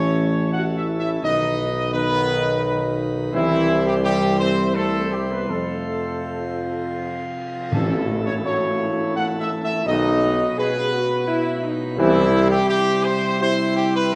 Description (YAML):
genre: classical, ceremonial fanfare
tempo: 84 BPM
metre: 3/4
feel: straight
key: unclear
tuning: A4 = 440 Hz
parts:
  - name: mellow trumpet section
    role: melody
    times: 0.0-14.1 s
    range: E4 to F#5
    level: -26 LUFS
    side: equal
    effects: none
  - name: dark trombone section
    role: sustained chords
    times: 0.0-14.2 s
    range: D#3 to D#4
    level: -30 LUFS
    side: equal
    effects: none
  - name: mellow French horn section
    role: sustained chords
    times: 0.0-14.1 s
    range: E3 to G#4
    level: -28 LUFS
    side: equal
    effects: none
  - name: pipe organ, principal chorus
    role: sustained chords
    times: 0.0-14.2 s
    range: B2 to C5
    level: -28 LUFS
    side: equal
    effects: none
  - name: clear tuba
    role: bass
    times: 0.0-12.6 s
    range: A1 to F2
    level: -27 LUFS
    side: equal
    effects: none
  - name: timpani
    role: percussion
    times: 0.0-0.1, 7.7-8.8 s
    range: A2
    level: -32 LUFS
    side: equal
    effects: none
  - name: cymbal swell and tam-tam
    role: percussion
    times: 3.3-10.5 s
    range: none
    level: -36 LUFS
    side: equal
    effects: none
room: wet recital hall reverb, RT60 1.6 s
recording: none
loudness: -21 LUFS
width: mono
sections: 0.0-7.7 A section; 7.7-14.2 A section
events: band accent 7.7-8.4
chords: 0.0 A; 1.2 B; 3.3 C; 5.5 F; 7.7 A; 9.9 B; 12.0 C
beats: 0.53 | 1.23 1.94 2.64 | 3.34 4.04 4.75 | 5.49 6.23 6.97 | 7.72 8.44 9.16 | 9.86 10.57 11.28 | 11.98 12.69 13.41 | 14.13